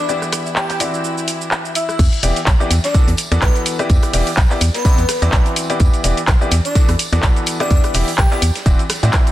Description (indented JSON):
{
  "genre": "piano house",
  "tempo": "126 BPM",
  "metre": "4/4",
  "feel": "swing 56% on 16ths",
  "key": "E minor",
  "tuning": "A4 = 440 Hz",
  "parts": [
    { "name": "airy dreamy lead", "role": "melody", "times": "0.0-8.4 s", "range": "B4 to G5", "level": "-24 LUFS", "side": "left 1 dB", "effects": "chorus, dub echo" },
    { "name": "bright studio string section", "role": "sustained chords", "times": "0.0-2.0 s", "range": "E4 to E5", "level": "-30 LUFS", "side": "left 4 dB", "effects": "sidechain pumping" },
    { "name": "clear baby grand piano", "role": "riff", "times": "0.0-9.3 s", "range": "E3 to D5", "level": "-22 LUFS", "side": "left 1 dB", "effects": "sidechain pumping, dub echo" },
    { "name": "house drum kit", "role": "drums", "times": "0.1-9.3 s", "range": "crash cymbal, handclaps, hi-hat, rim click, shaker", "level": "-21 LUFS", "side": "equal", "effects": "studio reverb" },
    { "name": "organ-like FM bass", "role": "bass", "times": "2.0-9.1 s", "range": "E1 to A2", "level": "-16 LUFS", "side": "equal", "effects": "sidechain pumping" },
    { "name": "big rock drum kit", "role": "drums", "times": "2.0-9.3 s", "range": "hi-hat, snare drum, tambourine", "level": "-29 LUFS", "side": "right 2 dB", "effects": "sidechain pumping on hats, high-pass filter on hats, studio reverb, high-pass filter on snare, sidechain pumping on perc, high-pass filter on perc, high-pass filter on room" },
    { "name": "electronic kick drum", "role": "drums", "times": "2.0-9.2 s", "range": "none", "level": "-14 LUFS", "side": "equal", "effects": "studio reverb" }
  ],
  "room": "small room ambience",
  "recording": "dense, heavily limited modern master",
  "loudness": "-13 LUFS",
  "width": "side -14 dB against mid",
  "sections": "0.0-2.0 A section; 2.0-9.3 B section",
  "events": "drop 2.0-9.3",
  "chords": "0.1 Em7; 0.8 D9/E; 2.0 Em7; 2.9 Bm7/E; 3.9 Em7; 4.6 D9/E; 5.8 Em7; 6.8 Bm7/E; 7.7 Em7; 8.4 D9/E"
}